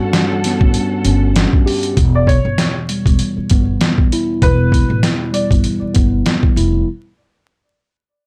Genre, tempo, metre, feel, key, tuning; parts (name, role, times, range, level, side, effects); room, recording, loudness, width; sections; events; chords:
hip hop, boom-bap hip-hop; 98 BPM; 4/4; swing 56% on 16ths; E dorian; A4 = 440 Hz
mellow tine electric piano; accompaniment; 0.0-6.9 s; E2 to G4; -21 LUFS; equal; high-pass filter, low-pass filter
muted studio string section; sustained chords; 0.0-1.9 s; G3 to F#5; -29 LUFS; equal; high-pass filter, low-pass filter
trip hop sampler-style drum kit; drums; 0.1-6.7 s; hi-hat, kick drum, snare drum; -17 LUFS; equal
upright bass; bass; 0.6-6.8 s; E1 to A1; -19 LUFS; equal; tube saturation
warm upright piano; melody; 2.2-5.5 s; B4 to D5; -24 LUFS; equal; high-pass filter, low-pass filter, analog delay
light reverb; dry, gritty hardware recording, vinyl crackle; -15 LUFS; mono
0.0-2.0 A section; 2.0-6.9 B section
0.0 A13; 2.0 Em